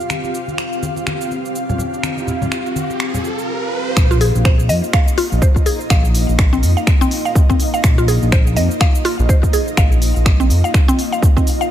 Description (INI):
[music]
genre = afro house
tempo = 124 BPM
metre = 4/4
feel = swing 58% on 16ths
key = unclear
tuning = A4 = 440 Hz
[part]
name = ethereal airy pad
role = sustained chords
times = 0.0-11.7 s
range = Bb3 to F5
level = -23 LUFS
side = equal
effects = ensemble chorus, built-in reverb, tremolo, vintage 12-bit sampler grit, sidechain pumping
[part]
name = deep house drum kit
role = drums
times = 0.0-11.7 s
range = cabasa, finger snaps, hi-hat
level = -24 LUFS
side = right 1 dB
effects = none
[part]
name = congas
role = percussion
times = 0.1-3.4 s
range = none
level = -25 LUFS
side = left 2 dB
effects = none
[part]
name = riser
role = sound effects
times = 1.4-4.0 s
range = none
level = -27 LUFS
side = right 2 dB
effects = none
[part]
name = smooth synth bass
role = bass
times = 4.0-10.6 s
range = Bb1 to F2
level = -16 LUFS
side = equal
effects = sidechain pumping
[part]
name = electronic kick drum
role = drums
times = 4.0-11.4 s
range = none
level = -13 LUFS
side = equal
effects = overdrive
[part]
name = mallet-like synth pluck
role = arpeggios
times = 4.1-11.7 s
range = C4 to F5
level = -20 LUFS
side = equal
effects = chorus, sidechain pumping, ping-pong delay
[sound]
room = little or no reverb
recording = none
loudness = -13 LUFS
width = side -11 dB against mid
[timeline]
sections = 0.0-4.0 A section; 4.0-11.7 B section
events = riser 1.4-4.0; drop 4.0-11.7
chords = 0.0 Fsus2; 4.0 Bbsus4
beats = | 0.10 0.58 1.06 1.55 | 2.03 2.52 3.00 3.48 | 3.97 4.45 4.94 5.42 | 5.90 6.39 6.87 7.36 | 7.84 8.32 8.81 9.29 | 9.78 10.26 10.74 11.23